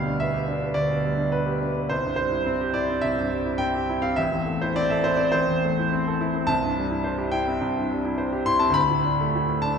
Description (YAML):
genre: classical, romantic character piece for solo piano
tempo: 105 BPM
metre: 4/4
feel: rubato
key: unclear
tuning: A4 = 437 Hz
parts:
  - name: clear concert grand piano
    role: solo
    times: 0.0-9.8 s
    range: A1 to C6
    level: -22 LUFS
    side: equal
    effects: none
room: wet church reverb, RT60 3.4 s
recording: recorded in a church or concert hall, nothing above 10.8 kHz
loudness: -22 LUFS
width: side -6 dB against mid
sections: 0.0-9.8 A section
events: none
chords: 0.0 G7/D; 1.9 C; 4.2 Am; 6.5 C; 8.8 D5